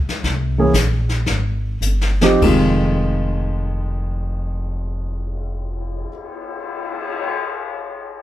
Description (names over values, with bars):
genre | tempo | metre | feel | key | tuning
jazz piano trio | 96-126 BPM | 4/4 | swing 67% on 8ths | F minor | A4 = 436 Hz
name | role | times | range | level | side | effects
upright bass | bass | 0.0-6.0 s | F1 to C2 | -20 LUFS | equal | none
jazz brush drum kit | drums | 0.1-7.3 s | brushed snare drum, crash cymbal, cymbal swell, hi-hat, kick drum, snare drum | -24 LUFS | left 3 dB | none
warm grand piano | melody | 0.6-6.1 s | F2 to Ab4 | -18 LUFS | right 1 dB | none
room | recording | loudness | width
light reverb | band playing live in one room, faint mains hum | -18 LUFS | side -13 dB against mid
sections
0.0-2.4 A section; 2.4-7.4 B section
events
slowing down 0.0-2.4; drum fill 1.8-2.4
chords
0.2 C7(no3); 2.4 Fm7